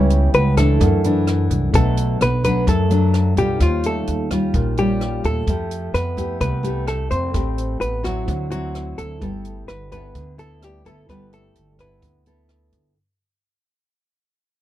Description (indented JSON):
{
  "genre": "bossa nova",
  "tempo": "128 BPM",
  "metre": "4/4",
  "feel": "straight",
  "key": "G major",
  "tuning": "A4 = 440 Hz",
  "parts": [
    { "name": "hollow-body jazz guitar", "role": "melody", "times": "0.0-12.7 s", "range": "F4 to C#5", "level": "-24 LUFS", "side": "left 1 dB", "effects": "none" },
    { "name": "growling trombone", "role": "second line", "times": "0.0-12.7 s", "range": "F3 to C#4", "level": "-30 LUFS", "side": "right 6 dB", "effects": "none" },
    { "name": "nylon-string guitar", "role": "accompaniment", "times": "0.0-12.9 s", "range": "F#2 to A4", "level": "-23 LUFS", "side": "left 2 dB", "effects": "none" },
    { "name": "tine electric piano", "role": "accompaniment", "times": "0.0-13.0 s", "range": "C4 to B5", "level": "-32 LUFS", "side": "moving between left 3 dB and right 10 dB", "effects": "auto-pan" },
    { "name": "upright bass", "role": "bass", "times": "0.0-12.9 s", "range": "G1 to F#2", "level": "-21 LUFS", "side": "equal", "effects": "none" },
    { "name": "compact cocktail drum kit", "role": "drums", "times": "0.1-12.8 s", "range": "hi-hat, kick drum, rim click", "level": "-25 LUFS", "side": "equal", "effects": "none" }
  ],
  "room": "light reverb",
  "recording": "dark, warm production",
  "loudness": "-17 LUFS",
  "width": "side -13 dB against mid",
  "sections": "0.0-13.0 A section",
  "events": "fade-out 1.0-13.0",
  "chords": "0.0 C#m7b5; 0.8 D9; 1.7 Bm7; 3.6 Eb9; 5.5 Fmaj9; 7.3 Am9; 8.3 D9; 9.2 G69"
}